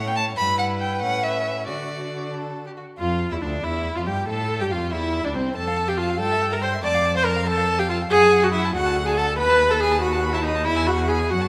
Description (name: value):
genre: quick classical-period movement for string quartet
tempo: 94 BPM (dotted quarters)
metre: 6/8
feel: straight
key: unclear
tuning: A4 = 440 Hz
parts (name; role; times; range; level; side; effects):
- rich violin; melody; 0.0-11.5 s; F#4 to D6; -33 LUFS; equal; none
- rich violin; second line; 0.0-11.5 s; C4 to B5; -30 LUFS; equal; none
- clear viola; accompaniment; 0.0-11.5 s; A3 to D5; -24 LUFS; equal; none
- rich cello; bass; 0.0-11.5 s; C2 to D3; -29 LUFS; equal; none
room: wet recital hall reverb, RT60 1.8 s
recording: none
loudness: -22 LUFS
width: mono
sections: 0.0-3.0 A section; 3.0-11.5 B section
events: none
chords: 0.4 Em/G; 1.0 A; 1.7 D; 3.0 Dm/F; 3.6 Em; 4.3 Dm; 5.6 F; 6.2 Gm69; 6.8 F; 8.1 F#m; 8.7 D; 9.4 B7/D#; 10.7 E